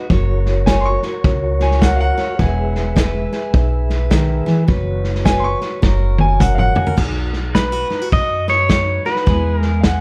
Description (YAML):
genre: honky-tonk and classic country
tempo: 105 BPM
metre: 4/4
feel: swing 62% on 8ths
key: B major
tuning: A4 = 438 Hz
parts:
  - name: mellow tonewheel organ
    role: accompaniment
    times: 0.0-7.0 s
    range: F#4 to E5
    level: -27 LUFS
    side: equal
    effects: slow rotary speaker
  - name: picked steel-string acoustic guitar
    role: accompaniment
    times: 0.0-10.0 s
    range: B2 to C#5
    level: -26 LUFS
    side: equal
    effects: none
  - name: upright bass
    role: bass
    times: 0.1-10.0 s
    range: E1 to F#2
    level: -21 LUFS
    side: equal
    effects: none
  - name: vintage drum kit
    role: drums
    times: 0.1-10.0 s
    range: crash cymbal, hi-hat, kick drum, snare drum, toms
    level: -21 LUFS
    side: equal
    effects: none
  - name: clear upright piano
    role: second line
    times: 0.7-10.0 s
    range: E#5 to C#6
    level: -24 LUFS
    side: equal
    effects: none
  - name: pedal steel guitar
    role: melody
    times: 7.5-9.8 s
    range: B4 to D#5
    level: -20 LUFS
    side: equal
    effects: none
room: light reverb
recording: dark, warm production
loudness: -17 LUFS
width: mono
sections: 0.0-7.0 A section; 7.0-10.0 B section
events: upright piano solo 0.0-7.0; drum fill 5.8-7.0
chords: 0.1 F#; 2.4 E; 4.7 F#sus4; 5.8 F#; 7.0 B; 9.3 E